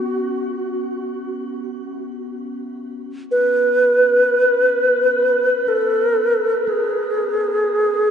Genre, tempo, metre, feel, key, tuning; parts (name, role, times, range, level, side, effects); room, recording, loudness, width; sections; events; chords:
world meditative, free-time meditation music; free time; A4 = 440 Hz
alto flute; melody; 0.0-8.1 s; F#4 to B4; -16 LUFS; equal; shimmer reverb, tape echo
bronze singing bowl; texture; 0.0-3.5 s; B3 to C#4; -31 LUFS; left 2 dB
wet huge ambient reverb, RT60 9.4 s; dreamy mix soaked in reverb, nothing above 10.3 kHz; -16 LUFS; side -8 dB against mid
0.0-8.1 A section